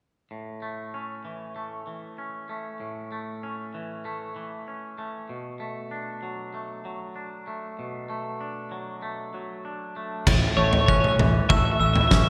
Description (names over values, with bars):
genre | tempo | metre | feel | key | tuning
post-rock | 96 BPM | 4/4 | straight | A major | A4 = 440 Hz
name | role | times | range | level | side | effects
twangy electric guitar | arpeggios | 0.3-12.3 s | A2 to D4 | -34 LUFS | equal | none
glockenspiel with brass mallets | arpeggios | 10.3-12.3 s | E6 to A6 | -33 LUFS | equal | none
growling fingered electric bass | bass | 10.3-12.3 s | A1 | -27 LUFS | equal | overdrive
big rock drum kit | drums | 10.3-12.3 s | crash cymbal, kick drum, snare drum, toms | -24 LUFS | equal | none
twelve-string electric guitar | melody | 10.6-12.3 s | C#5 to E5 | -26 LUFS | equal | none
room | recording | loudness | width
moderate concert hall reverb, RT60 2.3 s | recorded in a church or concert hall | -27 LUFS | mono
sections
0.3-10.3 A section; 10.3-12.3 B section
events
none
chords
0.3 A; 5.3 Bm7; 10.3 A